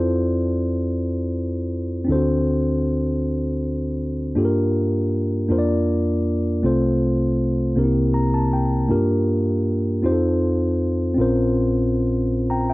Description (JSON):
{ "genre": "gospel", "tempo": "53 BPM (dotted quarters)", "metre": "6/8", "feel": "straight", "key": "F major", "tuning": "A4 = 439 Hz", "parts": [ { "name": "mellow tine electric piano", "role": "solo", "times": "0.0-12.7 s", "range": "Bb1 to Bb5", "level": "-18 LUFS", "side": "equal", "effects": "none" } ], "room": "digital ambience", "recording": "dry, close 1970s-style studio recording", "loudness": "-18 LUFS", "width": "side -20 dB against mid", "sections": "0.0-12.7 A section", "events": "tine electric piano fill 7.8-8.9", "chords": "0.0 Fmaj7; 2.1 D7; 4.4 Gm7; 5.5 Bb/F; 6.6 F/C; 7.8 C7; 8.9 Gm7; 10.0 F7; 11.2 Bbmadd9", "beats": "0.95 | 2.08 3.22 | 4.36 5.50 | 6.63 7.77 | 8.90 10.03 | 11.17 12.30" }